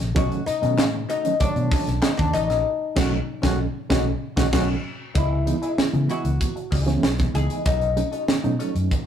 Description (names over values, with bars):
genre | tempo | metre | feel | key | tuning
funk | 96 BPM | 4/4 | straight | B mixolydian | A4 = 440 Hz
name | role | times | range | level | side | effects
vintage hollow-body jazz guitar | accompaniment | 0.0-9.0 s | B3 to D#5 | -33 LUFS | left 4 dB | wah
vintage muted fingered electric bass | bass | 0.0-8.9 s | A1 to C#3 | -25 LUFS | equal | none
crisp fusion drum kit | drums | 0.0-9.1 s | crash cymbal, hi-hat, kick drum, snare drum | -24 LUFS | right 1 dB | none
reed electric piano | stabs | 0.1-9.0 s | D#3 to C#5 | -27 LUFS | right 4 dB | fast tremolo, tube saturation
oud | melody | 0.2-8.6 s | D4 to G#4 | -26 LUFS | left 5 dB | none
group handclap | percussion | 0.8-2.2 s | none | -32 LUFS | left 3 dB | none
clear trombone | second line | 3.0-6.3 s | E4 to F#4 | -31 LUFS | right 2 dB | none
room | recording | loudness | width
moderate studio reverb, RT60 0.6 s | rough rehearsal-room recording, tube saturation | -20 LUFS | side -9 dB against mid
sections
0.0-5.2 A section; 5.2-9.1 B section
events
band accent 2.7-5.2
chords
0.0 B9; 5.2 C#m9; 7.7 B9